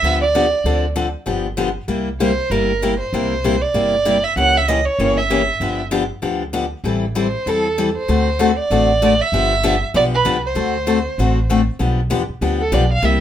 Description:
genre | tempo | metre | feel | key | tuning
acoustic string swing (jazz manouche) | 194 BPM | 4/4 | swing 59% on 8ths | G mixolydian | A4 = 441 Hz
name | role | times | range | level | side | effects
warm violin | melody | 0.0-13.2 s | A4 to F#5 | -18 LUFS | right 3 dB | none
picked steel-string acoustic guitar | accompaniment | 0.0-13.2 s | C3 to A4 | -19 LUFS | left 4 dB | none
upright bass | bass | 0.0-13.2 s | G1 to E2 | -22 LUFS | equal | none
room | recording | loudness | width
light reverb | minimal, uncompressed stereo recording | -15 LUFS | side -10 dB against mid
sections
0.0-11.8 A section; 11.8-13.2 B section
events
violin solo 11.8-13.2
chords
0.0 G7; 0.7 Dm7; 1.3 G7; 1.9 C7; 4.4 C#dim7; 5.6 G7; 6.9 Am7; 8.1 D7; 9.3 G7; 10.6 D7; 11.8 G7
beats
0.03 0.34 | 0.65 0.96 1.27 1.58 | 1.89 2.20 2.51 2.82 | 3.13 3.44 3.75 4.06 | 4.37 4.68 4.99 5.30 | 5.61 5.92 6.23 6.54 | 6.85 7.16 7.47 7.78 | 8.09 8.40 8.71 9.02 | 9.33 9.64 9.95 10.26 | 10.56 10.87 11.18 11.49 | 11.80 12.11 12.42 12.73 | 13.04

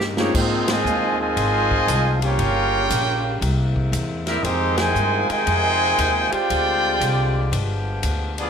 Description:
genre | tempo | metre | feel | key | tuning
jazz, big band swing | 117 BPM | 4/4 | swing 66% on 8ths | Ab major | A4 = 440 Hz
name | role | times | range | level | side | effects
mellow saxophone section | sustained chords | 0.0-8.5 s | C3 to Eb5 | -30 LUFS | left 2 dB | none
upright bass | bass | 0.0-8.5 s | G1 to Ab2 | -24 LUFS | equal | none
swinging big-band drum kit | drums | 0.0-8.5 s | crash cymbal, hi-hat, kick drum, ride cymbal, snare drum | -28 LUFS | left 1 dB | none
warm trumpet section | melody | 0.2-8.5 s | Ab3 to Ab5 | -21 LUFS | right 1 dB | none
bright trombone section | second line | 0.2-8.5 s | C3 to G4 | -25 LUFS | equal | none
warm concert grand piano | accompaniment | 0.2-0.8 s | Ab3 to F4 | -24 LUFS | left 2 dB | none
room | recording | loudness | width
moderate large studio reverb, RT60 0.8 s | none | -18 LUFS | side -7 dB against mid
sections
0.3-8.5 A section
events
drum fill 0.0-0.3; band accent 0.6, 4.7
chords
0.3 Ab6; 2.4 Gm7b5; 3.4 C7b13; 4.5 Fm9; 6.5 Dm7b5; 7.5 G7b9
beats
| 0.34 0.86 1.37 1.89 | 2.40 2.91 3.42 3.94 | 4.45 4.96 5.48 5.99 | 6.50 7.01 7.53 8.04

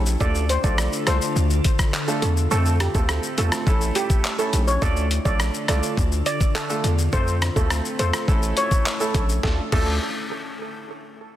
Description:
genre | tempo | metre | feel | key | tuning
dancehall | 104 BPM | 4/4 | straight | D minor | A4 = 439 Hz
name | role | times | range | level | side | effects
steel pan | melody | 0.0-10.0 s | G4 to D5 | -27 LUFS | right 1 dB | digital delay
glassy FM pad | sustained chords | 0.0-9.7 s | D3 to A4 | -32 LUFS | left 3 dB | ensemble chorus, built-in reverb, sidechain pumping
hard-hitting 808-style bass | bass | 0.0-10.0 s | A1 to F2 | -22 LUFS | equal | none
boom bap sampler-style drum kit | drums | 0.1-9.9 s | crash cymbal, handclaps, hi-hat, kick drum, rim click, shaker, snare drum | -24 LUFS | equal | soft clipping on snare
clear concert grand piano | accompaniment | 0.2-9.9 s | A3 to A4 | -28 LUFS | right 3 dB | none
room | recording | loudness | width
light reverb | dense, heavily limited modern master | -19 LUFS | side -12 dB against mid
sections
0.0-4.8 A section; 4.8-9.4 B section; 9.4-11.4 C section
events
none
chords
0.2 Dm; 2.5 F; 3.7 A; 4.8 Dm; 7.1 F; 8.3 A; 9.4 Dm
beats
| 0.20 0.78 1.36 1.94 | 2.51 3.09 3.67 4.24 | 4.82 5.40 5.97 6.55 | 7.13 7.71 8.28 8.86 | 9.44

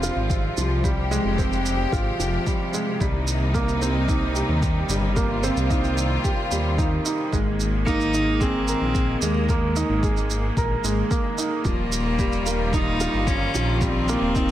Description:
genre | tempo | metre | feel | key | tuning
piano and strings electronica | 111 BPM | 4/4 | straight | Ab major | A4 = 441 Hz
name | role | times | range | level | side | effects
clear studio string section | sustained chords | 0.0-14.5 s | C3 to G4 | -29 LUFS | left 1 dB | none
warm upright piano | riff | 0.0-14.5 s | F3 to Bb4 | -26 LUFS | right 2 dB | digital delay
dark detuned saw bass | bass | 0.0-14.5 s | Eb1 to Eb2 | -25 LUFS | equal | sidechain pumping
shaker | drums | 0.0-14.5 s | none | -32 LUFS | right 5 dB | none
electronic kick drum | drums | 0.3-14.5 s | none | -25 LUFS | equal | none
rich cello | melody | 7.9-14.5 s | Ab3 to Eb4 | -26 LUFS | left 1 dB | none
room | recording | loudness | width
light reverb, small room ambience | none | -20 LUFS | side -12 dB against mid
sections
0.0-14.5 A section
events
none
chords
0.0 Fmadd9; 3.0 Cm7; 7.3 Absus2; 11.7 Ebadd9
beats
0.30 | 0.84 1.38 1.92 2.46 | 3.00 3.55 4.09 4.63 | 5.17 5.71 6.25 6.79 | 7.33 7.87 8.41 8.95 | 9.49 10.03 10.57 11.11 | 11.65 12.19 12.73 13.28 | 13.82 14.36

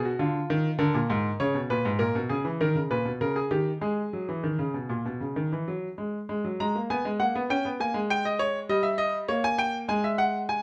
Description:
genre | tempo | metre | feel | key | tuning
classical, baroque-style two-part invention for grand piano | 100 BPM | 4/4 | straight | G# minor | A4 = 440 Hz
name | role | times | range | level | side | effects
clear grand piano | solo | 0.0-10.6 s | G#2 to A#5 | -28 LUFS | equal | none
room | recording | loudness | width
moderate stone room reverb, RT60 1.1 s | none | -28 LUFS | mono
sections
0.0-6.3 A section; 6.3-10.6 B section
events
none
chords
0.2 A#7/D; 1.4 A#m7b5; 2.6 D#7; 3.8 G#m; 7.5 Gdim; 8.7 D#7/G; 9.9 Eadd9/G#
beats
0.21 0.81 | 1.41 2.01 2.61 3.21 | 3.83 4.44 5.06 5.67 | 6.29 6.90 7.50 8.10 | 8.69 9.29 9.89 10.49

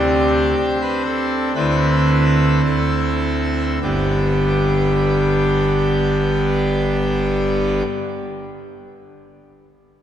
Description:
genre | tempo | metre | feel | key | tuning
classical, chorale-style piece for pipe organ | 50-64 BPM | 4/4 | rubato | G major | A4 = 440 Hz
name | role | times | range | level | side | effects
pipe organ, full organ | solo | 0.0-7.8 s | G1 to B4 | -16 LUFS | equal | none
room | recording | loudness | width
wet church reverb, RT60 3.6 s | none | -16 LUFS | side -10 dB against mid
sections
0.0-3.8 A section; 3.8-8.5 B section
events
slowing down 0.0-3.8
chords
0.0 D7sus4; 1.6 Dsus2; 3.8 G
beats
0.57 1.56 2.65 | 3.82 5.00 6.18 7.34

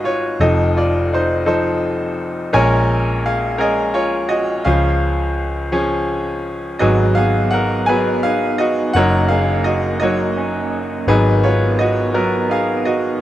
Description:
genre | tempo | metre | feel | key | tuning
acoustic folk-pop ballad | 56 BPM (dotted quarters) | 6/8 | straight | G# dorian | A4 = 438 Hz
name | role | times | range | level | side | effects
bright upright piano | melody | 0.0-13.2 s | F1 to G#5 | -16 LUFS | equal | slapback echo
vintage muted fingered electric bass | bass | 0.0-13.2 s | F1 to C#2 | -20 LUFS | equal | none
electric guitar through a small old amp | arpeggios | 6.8-13.2 s | D#3 to D#4 | -23 LUFS | right 3 dB | tremolo
room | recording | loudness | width
little or no reverb | recorded outdoors, with no room sound | -15 LUFS | side -13 dB against mid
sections
0.0-13.2 A section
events
none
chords
0.4 F7; 2.5 A#m7; 4.7 C#; 6.8 G#m7; 9.0 D#m7/F#; 11.1 G#m7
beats
| 0.40 1.47 | 2.53 3.59 | 4.65 5.72 | 6.80 7.88 | 8.95 10.02 | 11.08 12.14

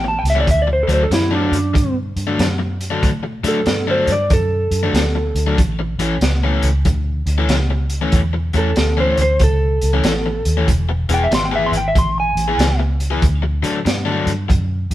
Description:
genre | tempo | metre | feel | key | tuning
electric blues shuffle | 94 BPM | 4/4 | swing 65% on 8ths | unclear | A4 = 440 Hz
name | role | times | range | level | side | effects
electric slide guitar | melody | 0.0-12.8 s | D4 to C6 | -19 LUFS | right 1 dB | none
overdriven electric guitar | riff | 0.0-14.5 s | A2 to G#4 | -22 LUFS | left 4 dB | none
vintage muted fingered electric bass | bass | 0.0-14.9 s | E1 to A2 | -19 LUFS | equal | none
crunchy breakbeat drum kit | drums | 0.3-14.9 s | hi-hat, kick drum, snare drum | -20 LUFS | equal | none
room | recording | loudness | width
light reverb | band playing live in one room | -15 LUFS | side -14 dB against mid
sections
0.0-14.9 A section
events
electric slide guitar solo 0.0-14.9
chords
0.5 D; 5.6 A; 10.7 E; 13.2 D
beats
| 0.47 1.11 1.75 2.39 | 3.03 3.67 4.30 4.94 | 5.58 6.22 6.86 7.50 | 8.13 8.77 9.40 10.04 | 10.68 11.31 11.95 12.59 | 13.22 13.86 14.49

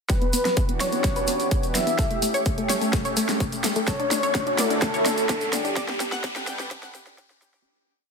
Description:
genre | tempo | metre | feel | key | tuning
progressive house | 127 BPM | 4/4 | straight | E dorian | A4 = 441 Hz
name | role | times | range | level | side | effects
wide unison lead | melody | 0.1-6.1 s | G4 to E5 | -26 LUFS | equal | sidechain pumping, ping-pong delay
lush unison pad | sustained chords | 0.4-7.6 s | D3 to F#5 | -30 LUFS | right 1 dB | chorus, phaser, sidechain pumping
analog pluck | arpeggios | 0.1-7.6 s | A3 to G5 | -29 LUFS | left 2 dB | chorus, sidechain pumping, ping-pong delay
big-room dance drum kit | drums | 0.1-7.6 s | hi-hat, snare drum | -28 LUFS | equal | overdrive
electronic kick drum | drums | 0.1-7.3 s | none | -25 LUFS | equal | overdrive
tube shaker | percussion | 0.1-7.6 s | none | -33 LUFS | left 1 dB | none
riser | sound effects | 2.4-7.7 s | none | -36 LUFS | right 1 dB | none
round analog bass | bass | 0.3-7.6 s | none | barely audible | none | none
room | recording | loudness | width
moderate lush hall reverb, RT60 2.0 s, digital ambience | dense, heavily limited modern master, high-pass filter | -21 LUFS | side -5 dB against mid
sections
0.1-7.7 build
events
build-up 0.1-7.7; drum fill 0.1-7.7; filter sweep on synth pluck 0.1-7.7; filter sweep 0.1-7.7; riser 2.4-7.7; fade-out 5.1-7.7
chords
0.1 Em7; 2.0 A7; 3.9 Dmaj7; 5.8 Gmaj7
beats
| 0.10 0.57 1.04 1.51 | 1.99 2.46 2.93 3.40 | 3.88 4.35 4.82 5.29 | 5.77 6.24 6.71 7.18

